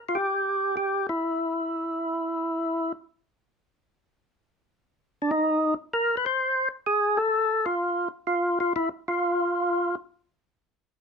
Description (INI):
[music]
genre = jazz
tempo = free time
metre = none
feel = none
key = unclear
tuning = A4 = 441 Hz
[part]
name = percussive tonewheel organ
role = solo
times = 0.1-10.0 s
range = D4 to C5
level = -24 LUFS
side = equal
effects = slow rotary speaker
[sound]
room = light reverb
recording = minimal, uncompressed stereo recording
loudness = -24 LUFS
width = side -5 dB against mid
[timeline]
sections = 0.0-11.0 A section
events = none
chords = none